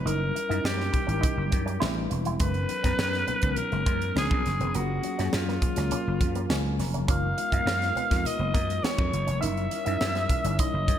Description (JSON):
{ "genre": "polished 1980s jazz-funk pop", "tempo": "103 BPM", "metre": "4/4", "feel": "straight", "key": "unclear", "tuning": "A4 = 444 Hz", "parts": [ { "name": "growling alto saxophone", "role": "melody", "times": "0.0-11.0 s", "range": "E#4 to E#5", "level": "-30 LUFS", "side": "left 1 dB", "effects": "ping-pong delay" }, { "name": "mellow tine electric piano", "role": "accompaniment", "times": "0.0-11.0 s", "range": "E#3 to A#5", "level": "-33 LUFS", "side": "left 3 dB", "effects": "medium stereo tremolo, analog chorus" }, { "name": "electric guitar with an envelope filter", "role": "riff", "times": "0.0-10.9 s", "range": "G#3 to E4", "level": "-36 LUFS", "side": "right 6 dB", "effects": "lush chorus" }, { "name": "vintage slap bass", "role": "bass", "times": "0.0-11.0 s", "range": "E1 to F#2", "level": "-29 LUFS", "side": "equal", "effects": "none" }, { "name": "crisp fusion drum kit", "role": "drums", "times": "0.1-11.0 s", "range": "hi-hat, kick drum, snare drum", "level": "-28 LUFS", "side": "equal", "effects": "gated reverb" }, { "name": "congas", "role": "percussion", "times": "0.1-11.0 s", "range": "none", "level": "-42 LUFS", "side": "left 2 dB", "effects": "none" } ], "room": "light reverb, small room ambience", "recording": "bright 1980s-style digital production", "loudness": "-24 LUFS", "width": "side -10 dB against mid", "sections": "0.0-11.0 A section", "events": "tine electric piano fill 5.9-7.1", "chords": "0.1 D#7b9/F#; 1.8 Am11; 2.4 G#m11/F#; 4.2 C#7b9; 4.7 F#maj9; 7.1 C#13/F#; 9.4 D#7b9/F#" }